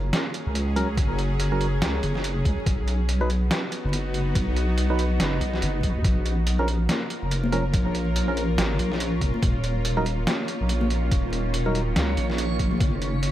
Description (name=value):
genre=deep dubstep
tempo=142 BPM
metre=4/4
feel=swing 59% on 16ths, half-time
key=Bb phrygian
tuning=A4 = 441 Hz
part: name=bowed-like drone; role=sustained chords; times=0.0-13.3 s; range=Eb3 to Bb4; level=-31 LUFS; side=equal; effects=built-in reverb
part: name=deep soft wobble bass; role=bass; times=0.0-13.3 s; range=Eb1 to D#2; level=-24 LUFS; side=equal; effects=chorus, tube saturation
part: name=trip hop sampler-style drum kit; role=drums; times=0.1-13.3 s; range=hi-hat, snare drum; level=-29 LUFS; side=right 1 dB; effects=overdrive
part: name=percussive organ stab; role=stabs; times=0.8-11.8 s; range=F3 to B4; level=-31 LUFS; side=right 1 dB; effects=chorus, dub echo
part: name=electronic kick drum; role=drums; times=1.0-12.9 s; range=none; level=-24 LUFS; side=equal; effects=overdrive
part: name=backwards swelling texture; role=texture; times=7.1-13.3 s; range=Db4 to Db5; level=-35 LUFS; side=equal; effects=built-in reverb
part: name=congas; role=percussion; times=6.9-12.8 s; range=none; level=-32 LUFS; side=left 3 dB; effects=dub echo
room=digital ambience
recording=vinyl crackle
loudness=-22 LUFS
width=side -13 dB against mid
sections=0.0-13.3 A section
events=none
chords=0.0 Gb; 2.7 B; 6.0 Bbm; 9.4 Ebm; 12.8 Gb5